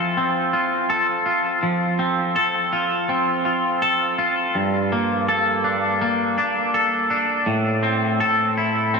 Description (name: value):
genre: rock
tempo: 82 BPM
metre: 4/4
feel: straight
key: unclear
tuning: A4 = 440 Hz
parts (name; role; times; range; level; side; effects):
- twangy electric guitar; solo; 0.0-9.0 s; G2 to A4; -18 LUFS; equal; wide subtle chorus, diffuse ambient delay
room: wet huge ambient reverb, RT60 7.8 s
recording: dreamy mix soaked in reverb, studio ambience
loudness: -18 LUFS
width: side -4 dB against mid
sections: 0.0-9.0 A section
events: none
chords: 0.0 F; 4.6 Gmadd9; 7.5 Am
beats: 0.18 0.91 | 1.63 2.36 3.09 3.82 | 4.55 5.28 6.01 6.74 | 7.47 8.21 8.94